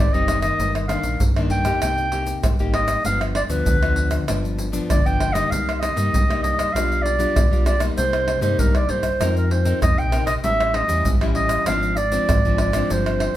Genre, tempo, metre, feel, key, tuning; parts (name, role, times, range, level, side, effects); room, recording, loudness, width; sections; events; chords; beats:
samba and choro; 98 BPM; 4/4; straight; C minor; A4 = 440 Hz
mellow clarinet; melody; 0.0-13.4 s; Bb4 to G5; -22 LUFS; right 1 dB
nylon-string guitar; accompaniment; 0.0-13.4 s; G2 to Bb4; -26 LUFS; left 3 dB
sub bass with octave; bass; 0.0-13.3 s; F#1 to G2; -24 LUFS; equal
egg shaker, pandeiro, tamborim and surdo; percussion; 0.1-13.4 s; -22 LUFS; equal
wet studio reverb, RT60 0.9 s; band playing live in one room; -18 LUFS; side -13 dB against mid
0.0-13.4 A section
0.0 Abmaj7; 0.6 Ebmaj7/G; 1.8 Cm7; 3.1 G7; 5.5 Cm7; 6.7 G7/B; 8.0 Cm7; 9.2 F7sus4; 10.4 A7; 11.7 Dm7b5/Ab
| 0.59 1.21 1.82 2.44 | 3.06 3.67 4.29 4.90 | 5.52 6.13 6.75 7.36 | 7.98 8.59 9.21 9.82 | 10.44 11.06 11.68 12.29 | 12.91